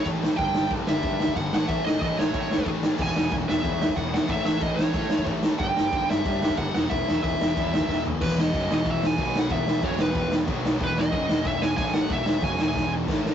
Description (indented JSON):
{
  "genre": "punk rock",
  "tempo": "184 BPM",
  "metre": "4/4",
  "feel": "straight",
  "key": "unclear",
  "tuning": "A4 = 440 Hz",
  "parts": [
    { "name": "high-gain lead guitar", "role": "melody", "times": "0.0-12.9 s", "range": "B4 to G#5", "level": "-28 LUFS", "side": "equal", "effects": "distortion" },
    { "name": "distorted electric guitar", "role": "riff", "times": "0.0-13.3 s", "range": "E2 to B3", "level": "-34 LUFS", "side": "left 6 dB", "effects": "overdrive" },
    { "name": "overdriven semi-hollow guitar", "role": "riff", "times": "0.0-13.3 s", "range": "E2 to B3", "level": "-34 LUFS", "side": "right 4 dB", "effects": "none" },
    { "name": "thick fuzz guitar", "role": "riff", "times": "0.0-13.3 s", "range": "E2 to B3", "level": "-34 LUFS", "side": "equal", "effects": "none" },
    { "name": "fuzz picked electric bass", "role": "bass", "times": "0.1-13.3 s", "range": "E1 to A2", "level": "-32 LUFS", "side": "equal", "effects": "overdrive" },
    { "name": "raw garage drum kit", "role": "drums", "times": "0.1-13.3 s", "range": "crash cymbal, kick drum, ride cymbal, snare drum, toms", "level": "-25 LUFS", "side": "equal", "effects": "none" }
  ],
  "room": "light reverb",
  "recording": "rough rehearsal-room recording, warm saturation, nothing above 7.8 kHz",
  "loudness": "-22 LUFS",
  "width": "side -9 dB against mid",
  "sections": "0.0-8.2 A section; 8.2-13.3 B section",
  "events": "drum fill 7.9-8.2, 12.8-13.3",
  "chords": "0.4 G5; 1.5 A; 3.0 E; 4.3 A; 5.6 G5; 6.8 E5; 9.2 B5; 9.5 E5; 10.5 B5; 10.8 E5; 11.8 A5; 12.1 E"
}